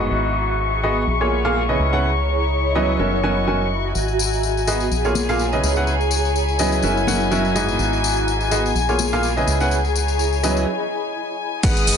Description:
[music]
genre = piano house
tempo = 125 BPM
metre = 4/4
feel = swing 56% on 16ths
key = unclear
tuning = A4 = 440 Hz
[part]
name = rich chamber string section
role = sustained chords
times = 0.0-12.0 s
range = G#5 to D#6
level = -25 LUFS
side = left 7 dB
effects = sidechain pumping, low-pass filter
[part]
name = clear upright piano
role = riff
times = 0.0-12.0 s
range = G#2 to G#5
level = -22 LUFS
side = right 2 dB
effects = sidechain pumping, tape echo
[part]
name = organ-like FM bass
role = bass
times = 0.0-12.0 s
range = F#1 to C#2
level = -23 LUFS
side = equal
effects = sidechain pumping
[part]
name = granular cloud pad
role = texture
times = 0.0-10.7 s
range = G#4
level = -25 LUFS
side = equal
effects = built-in reverb, sidechain pumping
[part]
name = tambourine and congas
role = percussion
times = 4.0-12.0 s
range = none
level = -27 LUFS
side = left 7 dB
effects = none
[part]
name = breakbeat sampler-style drum kit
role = drums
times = 11.6-12.0 s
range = hi-hat, snare drum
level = -31 LUFS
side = right 2 dB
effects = none
[part]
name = electronic kick drum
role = drums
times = 11.6-11.7 s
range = none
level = -17 LUFS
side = equal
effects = overdrive
[part]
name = house drum kit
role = drums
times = 11.6-12.0 s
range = crash cymbal, hi-hat, shaker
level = -22 LUFS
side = right 1 dB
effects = none
[sound]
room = light reverb, digital ambience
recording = nothing above 11.0 kHz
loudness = -17 LUFS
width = side -7 dB against mid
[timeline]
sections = 0.0-11.6 A section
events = break 10.7-11.6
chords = 0.1 G#m7; 1.1 A#m7; 1.8 C#m9; 3.0 F#7; 4.0 G#m7; 4.9 A#m7; 5.6 C#m9; 6.8 F#7; 7.8 G#m7; 8.8 A#m7; 9.5 C#m9; 10.7 N.C.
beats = | 0.11 0.59 1.07 1.55 | 2.03 2.51 2.99 3.47 | 3.95 4.43 4.91 5.39 | 5.87 6.35 6.83 7.31 | 7.79 8.27 8.75 9.23 | 9.71 10.19 10.67 11.15 | 11.63

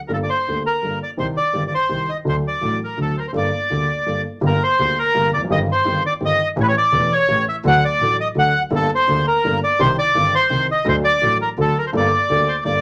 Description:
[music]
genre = tango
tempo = 167 BPM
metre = 3/4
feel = rubato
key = G harmonic minor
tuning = A4 = 440 Hz
[part]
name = bandoneon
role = melody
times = 0.1-12.8 s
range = A4 to F#5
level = -20 LUFS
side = equal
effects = none
[part]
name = dark grand piano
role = accompaniment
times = 0.1-12.8 s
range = E1 to A4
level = -24 LUFS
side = equal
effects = none
[part]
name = dark double bass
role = bass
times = 0.1-12.8 s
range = E1 to D2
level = -31 LUFS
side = equal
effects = none
[sound]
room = moderate club reverb, RT60 0.7 s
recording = none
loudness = -18 LUFS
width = mono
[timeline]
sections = 0.0-4.4 A section; 4.4-12.8 A section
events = none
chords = 0.1 Gmadd9; 1.2 Cm; 2.3 D; 3.3 Gmadd9; 4.4 Gm; 5.5 Cm/G; 6.6 A7; 7.6 D; 8.7 Gmadd9; 9.8 Cm; 10.9 D; 11.9 Gmadd9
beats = | 0.11 0.47 0.83 | 1.19 1.55 1.91 | 2.27 2.62 2.98 | 3.34 3.70 4.06 | 4.42 4.78 5.14 | 5.50 5.86 6.21 | 6.57 6.93 7.29 | 7.64 8.00 8.36 | 8.72 9.08 9.44 | 9.80 10.15 10.51 | 10.87 11.22 11.58 | 11.94 12.29 12.65

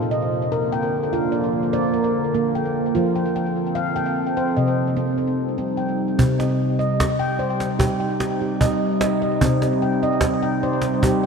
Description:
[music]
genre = world meditative, meditative tuned percussion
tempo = 74 BPM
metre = 4/4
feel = straight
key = C dorian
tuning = A4 = 437 Hz
[part]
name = deep dark ambient pad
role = sustained chords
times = 0.0-11.3 s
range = C3 to A4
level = -22 LUFS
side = right 1 dB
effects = chorus, built-in reverb
[part]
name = handpan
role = arpeggios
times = 0.0-11.3 s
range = Bb2 to G5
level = -22 LUFS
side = left 1 dB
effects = ping-pong delay
[part]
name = cajon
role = percussion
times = 6.2-11.2 s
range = none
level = -23 LUFS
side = right 1 dB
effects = none
[sound]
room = moderate plate reverb, RT60 3.2 s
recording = dreamy mix soaked in reverb, cassette tape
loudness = -19 LUFS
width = side -5 dB against mid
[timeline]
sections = 0.0-6.2 A section; 6.2-11.3 B section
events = none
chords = 0.0 Bb; 3.0 F; 4.6 Cm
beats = 0.52 1.33 2.15 | 2.96 3.76 4.57 5.38 | 6.19 7.00 7.80 8.61 | 9.41 10.22 11.02

